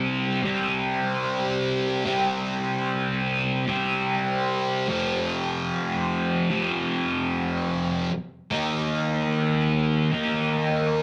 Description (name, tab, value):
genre	rock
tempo	74 BPM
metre	4/4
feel	straight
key	C minor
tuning	A4 = 438 Hz
part	thick fuzz guitar	solo	0.0-11.0 s	F2 to Eb4	-25 LUFS	equal	distortion, phaser
room	moderate club reverb, RT60 0.8 s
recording	none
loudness	-25 LUFS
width	mono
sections	0.0-11.0 A section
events	none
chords	0.0 C5; 4.9 F5; 8.5 Eb5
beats	0.44 1.25 | 2.05 2.86 3.67 4.47 | 5.28 6.09 6.90 7.70 | 8.51 9.32 10.13 10.94